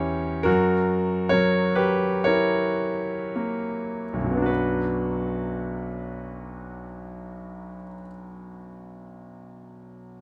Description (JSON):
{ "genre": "classical, romantic nocturne for solo piano", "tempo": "26-37 BPM", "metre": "4/4", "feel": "rubato", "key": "B minor", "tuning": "A4 = 437 Hz", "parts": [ { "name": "clear concert grand piano", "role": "solo", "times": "0.0-10.2 s", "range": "B1 to C#5", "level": "-26 LUFS", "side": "equal", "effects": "none" } ], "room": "light reverb", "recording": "close, detailed microphones", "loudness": "-24 LUFS", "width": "mono", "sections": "0.0-4.5 A section; 4.5-10.2 B section", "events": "slowing down 0.0-4.5", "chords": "0.5 F#7; 4.5 Bm", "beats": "0.46 2.27 | 4.47 6.62 8.67" }